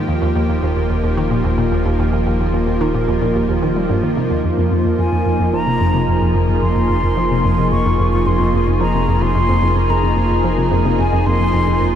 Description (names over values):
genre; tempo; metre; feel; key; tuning
ambient, sequencer-driven space music; 110 BPM; 4/4; straight; F minor; A4 = 438 Hz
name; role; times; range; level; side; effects
lush unison pad; sustained chords; 0.0-12.0 s; F3 to Ab4; -18 LUFS; equal; chorus
round analog bass; bass; 0.0-12.0 s; Eb1 to F1; -23 LUFS; equal; none
hollow square pluck; riff; 0.1-11.9 s; Eb2 to G3; -18 LUFS; equal; chorus, phaser, tape echo
mellow hollow silver concert flute; melody; 5.0-12.0 s; Ab5 to Db6; -21 LUFS; equal; tape echo
room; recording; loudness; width
wet huge ambient reverb, RT60 8.0 s; dark, warm production; -14 LUFS; side -9 dB against mid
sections
0.0-12.0 A section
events
none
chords
0.1 Eb; 4.4 Fm